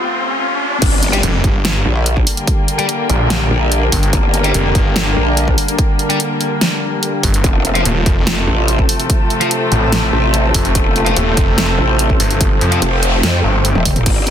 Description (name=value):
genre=heavy wobble dubstep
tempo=145 BPM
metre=4/4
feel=half-time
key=G minor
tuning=A4 = 442 Hz
part: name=dark chamber string section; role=sustained chords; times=0.0-14.3 s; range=F2 to F4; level=-20 LUFS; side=left 1 dB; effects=sidechain pumping
part: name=riser, impact and noise sweep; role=sound effects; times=0.0-2.5, 12.9-14.1 s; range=none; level=-21 LUFS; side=equal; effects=none
part: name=growl bass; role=bass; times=0.8-14.3 s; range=Eb1 to F2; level=-16 LUFS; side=equal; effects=distortion, chorus, overdrive
part: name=big-room dance drum kit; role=drums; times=0.8-14.3 s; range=crash cymbal, hi-hat, snare drum, toms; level=-18 LUFS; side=equal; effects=none
part: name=electronic kick drum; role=drums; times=0.8-14.1 s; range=none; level=-16 LUFS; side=equal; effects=none
part: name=granular cloud pad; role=texture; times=2.3-14.3 s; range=D4 to A5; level=-23 LUFS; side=left 1 dB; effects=built-in reverb, sidechain pumping
part: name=fuzz guitar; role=stabs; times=1.1-12.8 s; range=F4 to G5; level=-23 LUFS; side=left 2 dB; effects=distortion, vintage 12-bit sampler grit, dub echo
part: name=snarling distorted saw bass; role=bass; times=1.2-13.7 s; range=Eb1 to F2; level=-16 LUFS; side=equal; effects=distortion, overdrive
room=light reverb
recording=dense, heavily limited modern master, high-pass filter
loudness=-12 LUFS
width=side -9 dB against mid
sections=0.8-14.3 A section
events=break 0.0-0.8; riser 0.0-0.8; drop 0.8-14.3; impact 0.8-2.5; noise sweep 12.9-14.1; drum fill 13.8-14.1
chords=0.0 F; 0.8 Gm; 7.4 F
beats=0.41 | 0.82 1.23 1.65 2.06 | 2.48 2.89 3.30 3.72 | 4.13 4.54 4.96 5.37 | 5.79 6.20 6.61 7.03 | 7.44 7.86 8.27 8.68 | 9.10 9.51 9.92 10.34 | 10.75 11.16 11.58 11.99 | 12.41 12.82 13.23 13.65 | 14.06